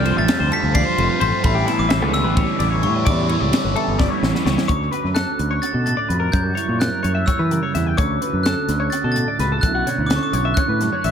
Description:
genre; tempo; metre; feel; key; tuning
math rock and midwest emo; 256 BPM (eighths); 7/8; straight; D major; A4 = 440 Hz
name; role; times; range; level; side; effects
glockenspiel with brass mallets; melody; 0.0-11.0 s; B5 to C7; -23 LUFS; equal; tape echo
mellow electric guitar; accompaniment; 0.0-11.1 s; D2 to F#4; -26 LUFS; right 8 dB; tape echo
twelve-string electric guitar; arpeggios; 0.0-11.1 s; E4 to G5; -26 LUFS; left 9 dB; lush chorus
biting overdriven guitar; riff; 0.0-4.7 s; A2 to F4; -24 LUFS; right 1 dB; phaser
growling fingered electric bass; bass; 0.0-11.1 s; F1 to E3; -22 LUFS; equal; overdrive
crisp fusion drum kit; drums; 0.1-11.1 s; hi-hat, kick drum, ride cymbal, snare drum; -23 LUFS; equal; tape echo
room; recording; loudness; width
light reverb, small room ambience; echo-heavy mix; -17 LUFS; side -8 dB against mid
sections
0.0-4.7 A section; 4.7-11.1 B section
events
drum fill 4.0-4.7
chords
0.0 F69; 1.4 A9sus4; 4.7 Dmaj7; 6.3 F#7b9; 8.0 Dmaj7; 9.6 Bm11

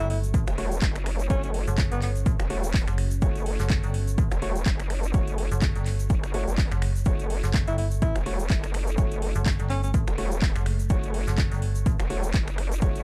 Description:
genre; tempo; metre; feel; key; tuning
bass house; 125 BPM; 4/4; swing 56% on 16ths; F# phrygian; A4 = 436 Hz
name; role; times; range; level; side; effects
clear alto saxophone; melody; 0.0-2.1, 7.7-9.9 s; B3 to E4; -36 LUFS; equal; digital delay
sweeping resonant pad; sustained chords; 0.0-13.0 s; A3 to C#5; -46 LUFS; equal; none
clear concert grand piano; stabs; 0.0-13.0 s; A3 to C#5; -39 LUFS; equal; sidechain pumping, digital delay
metallic FM bass; bass; 0.0-12.0 s; F#1 to A1; -28 LUFS; equal; overdrive, sidechain pumping
house drum kit; drums; 0.0-13.0 s; finger snaps, handclaps, hi-hat; -38 LUFS; equal; overdrive
egg shaker; percussion; 0.2-13.0 s; none; -47 LUFS; equal; none
electronic kick drum; drums; 0.3-12.9 s; none; -28 LUFS; equal; overdrive
vowel-sweep wobble bass; bass; 0.5-13.0 s; E1 to F#1; -31 LUFS; equal; chorus, overdrive, sidechain pumping
room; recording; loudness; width
little or no reverb; dark, warm production; -25 LUFS; mono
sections
0.0-13.0 A section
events
none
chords
0.0 F#m

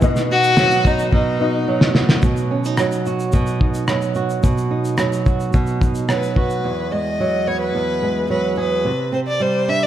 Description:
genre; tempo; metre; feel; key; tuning
acoustic pop; 109 BPM; 4/4; straight; unclear; A4 = 439 Hz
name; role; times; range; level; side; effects
clear upright piano; accompaniment; 0.0-2.3 s; B3 to D#5; -26 LUFS; left 8 dB; slapback echo
flamenco guitar; accompaniment; 0.0-9.9 s; E2 to G#4; -20 LUFS; right 3 dB; none
cloth-damped thuddy drum kit; drums; 0.0-6.6 s; kick drum, rim click, shaker, snare drum; -18 LUFS; equal; none
dark violin; melody; 0.3-1.9, 6.1-9.9 s; D#4 to E5; -20 LUFS; left 2 dB; slapback echo
room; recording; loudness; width
moderate lush hall reverb, RT60 2.0 s; big arena sound; -16 LUFS; side -11 dB against mid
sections
0.0-2.2 A section; 2.2-6.6 B section; 6.6-9.9 C section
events
drum fill 1.1-2.2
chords
0.0 B; 6.6 Eadd9; 8.9 Csus2

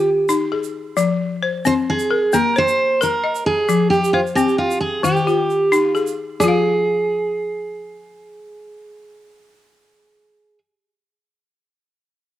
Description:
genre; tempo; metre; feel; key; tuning
west african traditional, West African string and xylophone music; 88 BPM (dotted quarters); 12/8; straight; F minor; A4 = 443 Hz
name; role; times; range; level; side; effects
picked steel-string acoustic guitar; melody; 0.0-10.6 s; F4 to C5; -18 LUFS; right 2 dB; none
balafon; arpeggios; 0.0-10.7 s; Eb3 to F5; -20 LUFS; left 5 dB; cassette tape
egg shaker; percussion; 0.3-6.6 s; none; -33 LUFS; right 10 dB; none
room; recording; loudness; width
moderate spring reverb, RT60 1.7 s; home recording on cassette; -16 LUFS; side -13 dB against mid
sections
0.0-6.4 A section; 6.4-9.1 B section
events
none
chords
0.0 N.C.; 1.0 Fm; 2.3 Bbsus4; 3.7 F5; 5.0 Eb; 6.4 Fm

